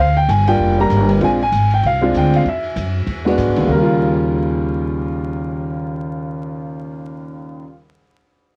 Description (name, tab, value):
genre	jazz piano trio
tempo	194 BPM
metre	4/4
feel	swing 60% on 8ths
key	Eb mixolydian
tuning	A4 = 440 Hz
part	warm grand piano	melody	0.0-7.7 s	Eb2 to Bb5	-20 LUFS	equal	cassette tape
part	upright bass	bass	0.0-7.6 s	F1 to G#2	-22 LUFS	equal	transformer saturation
part	open jazz drum kit	drums	0.3-3.6 s	hi-hat, kick drum, ride cymbal, snare drum	-33 LUFS	equal	vintage 12-bit sampler grit, cassette tape
room	light reverb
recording	home recording on cassette, vinyl crackle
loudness	-17 LUFS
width	mono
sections	0.0-3.7 A section; 3.7-6.2 B section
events	none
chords	0.0 Gm7; 1.2 Bb9; 2.5 E7; 3.7 Eb9